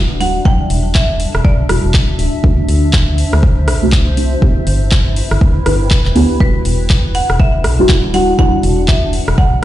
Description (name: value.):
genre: deep house.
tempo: 121 BPM.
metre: 4/4.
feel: swing 60% on 16ths.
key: E minor.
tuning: A4 = 439 Hz.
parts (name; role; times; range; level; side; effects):
marimba with hard mallets; melody; 0.0-2.1, 6.4-9.6 s; B4 to G5; -20 LUFS; right 1 dB; digital delay.
deep mellow chord stab; stabs; 0.0-9.6 s; F#3 to B4; -18 LUFS; right 1 dB; chorus, sidechain pumping, digital delay.
organ-like FM bass; bass; 0.0-9.6 s; D1 to D2; -15 LUFS; equal; sidechain pumping.
granular cloud pad; texture; 0.0-9.6 s; G3 to F#5; -23 LUFS; left 2 dB; built-in reverb, sidechain pumping.
deep house drum kit; drums; 0.2-9.4 s; handclaps, hi-hat, rim click; -20 LUFS; equal; none.
electronic kick drum; drums; 0.5-9.5 s; none; -12 LUFS; equal; none.
room: digital ambience.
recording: played on a big sound system in a bare room, stone room reverb, nothing above 10.9 kHz.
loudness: -10 LUFS.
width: side -14 dB against mid.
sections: 0.0-9.6 A section.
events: filter sweep on synth stab 0.0-9.6.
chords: 0.0 Em9; 2.2 D7; 4.4 G6; 6.4 Em9.